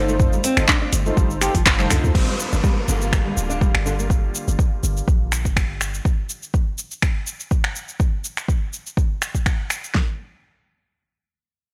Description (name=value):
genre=afro house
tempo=123 BPM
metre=4/4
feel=swing 54% on 16ths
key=G minor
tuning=A4 = 442 Hz
part: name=kalimba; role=melody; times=0.0-1.9 s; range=C5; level=-32 LUFS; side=equal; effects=analog delay
part: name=rich chamber string section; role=sustained chords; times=0.0-6.0 s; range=D3 to F4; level=-35 LUFS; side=equal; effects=sidechain pumping, low-pass filter
part: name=nylon-string guitar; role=arpeggios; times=0.0-4.0 s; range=D3 to G4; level=-29 LUFS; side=equal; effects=sidechain pumping, low-pass filter, analog delay
part: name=mellow synth brass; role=stabs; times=0.0-2.1 s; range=Eb4 to C5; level=-31 LUFS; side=equal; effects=chorus, sidechain pumping, analog delay
part: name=warm 808-style bass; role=bass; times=0.0-6.0 s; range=D1 to D2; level=-25 LUFS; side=equal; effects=sidechain pumping
part: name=deep house drum kit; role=drums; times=0.1-9.9 s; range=cabasa, crash cymbal, finger snaps, handclaps, hi-hat, toms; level=-25 LUFS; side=equal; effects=studio reverb
part: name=deep house drum kit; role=drums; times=0.2-10.1 s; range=kick drum, snare drum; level=-22 LUFS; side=equal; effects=studio reverb
part: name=downlifter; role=sound effects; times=2.1-6.0 s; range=none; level=-33 LUFS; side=equal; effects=none
room=light reverb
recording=dry, gritty hardware recording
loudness=-21 LUFS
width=mono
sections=0.0-2.1 A section; 2.1-10.0 B section; 10.0-11.7 C section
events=drop 0.0-2.1; drum fill 1.7-2.1; filter sweep on string section 2.1-6.0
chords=0.0 F7; 2.1 Gm7; 10.0 N.C.